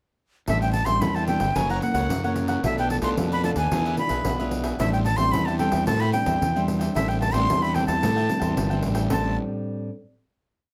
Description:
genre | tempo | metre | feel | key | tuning
samba and choro | 111 BPM | 4/4 | straight | A minor | A4 = 440 Hz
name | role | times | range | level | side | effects
breathy bright jazz flute | melody | 0.5-9.4 s | E5 to C6 | -28 LUFS | equal | none
cavaquinho | accompaniment | 0.5-9.3 s | D4 to G5 | -36 LUFS | equal | none
nylon-string guitar | accompaniment | 0.5-9.9 s | F#2 to F4 | -31 LUFS | equal | none
fuzz fingered electric bass | bass | 0.5-9.4 s | F#1 to A2 | -28 LUFS | equal | overdrive
pandeiro | percussion | 0.5-9.2 s | none | -32 LUFS | equal | none
room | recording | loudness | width
wet small room ambience, RT60 0.5 s | heard from further back in the room | -23 LUFS | mono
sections
0.5-9.1 A section; 9.1-10.7 final chord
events
none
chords
0.5 Am7; 1.6 F#7; 2.6 Bm7b5; 3.7 E7b9; 4.8 Am7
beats
| 0.48 1.02 1.56 2.10 | 2.63 3.17 3.71 4.25 | 4.79 5.33 5.87 6.41 | 6.95 7.49 8.03 8.57 | 9.11 9.65

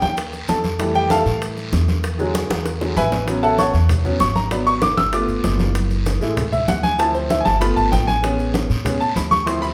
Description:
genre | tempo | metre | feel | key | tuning
Afro-Cuban jazz | 194 BPM | 4/4 | straight | A major from 3.3 s | A4 = 440 Hz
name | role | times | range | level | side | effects
clear baby grand piano | accompaniment | 0.0-9.7 s | D3 to E6 | -22 LUFS | equal | none
upright bass | bass | 0.0-9.7 s | F#1 to A2 | -25 LUFS | equal | none
congas | percussion | 0.0-9.7 s | none | -28 LUFS | equal | none
guiro | percussion | 0.0-9.7 s | none | -37 LUFS | equal | none
maracas | percussion | 0.0-9.7 s | none | -42 LUFS | equal | none
bongos | percussion | 0.2-9.7 s | none | -32 LUFS | equal | none
room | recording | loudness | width
wet large studio reverb, RT60 0.9 s | band playing live in one room | -19 LUFS | mono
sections
0.0-3.3 A section; 3.3-9.7 A section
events
grand piano solo 0.0-9.7; drum fill 2.3-3.3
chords
0.0 Ebadd9; 0.8 Fmaj7; 2.0 E7; 3.3 A6; 4.5 G#m7b5; 5.1 G9; 5.8 F#m7; 7.0 Dm7; 7.6 G9; 8.2 Amaj7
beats
0.18 0.49 | 0.80 1.11 1.42 1.73 | 2.04 2.35 2.65 2.96 | 3.27 3.58 3.90 4.21 | 4.51 4.83 5.13 5.45 | 5.75 6.07 6.38 6.68 | 7.00 7.30 7.61 7.92 | 8.23 8.54 8.85 9.16 | 9.47

